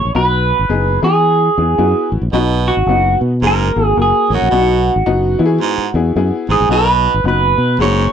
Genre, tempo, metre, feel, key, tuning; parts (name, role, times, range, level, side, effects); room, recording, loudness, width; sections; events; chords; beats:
soul; 110 BPM; 4/4; swing 61% on 8ths; B major; A4 = 439 Hz
electric guitar through a small old amp; melody; 0.0-8.1 s; F#4 to C#5; -15 LUFS; right 2 dB; phaser
fingered electric bass; bass; 0.0-8.1 s; F#1 to E3; -16 LUFS; equal
clear upright piano; accompaniment; 0.1-8.0 s; A#3 to A#4; -20 LUFS; left 5 dB
growling baritone saxophone; riff; 2.3-8.1 s; F#2 to B2; -19 LUFS; right 9 dB
light reverb; -12 LUFS; side -8 dB against mid
0.0-8.1 A section
0.1 B; 1.0 E; 2.3 B; 3.4 F#add9; 4.5 B; 5.3 E; 6.7 B
| 0.15 0.69 1.24 1.79 | 2.34 2.88 3.43 3.98 | 4.53 5.07 5.62 6.17 | 6.71 7.26 7.81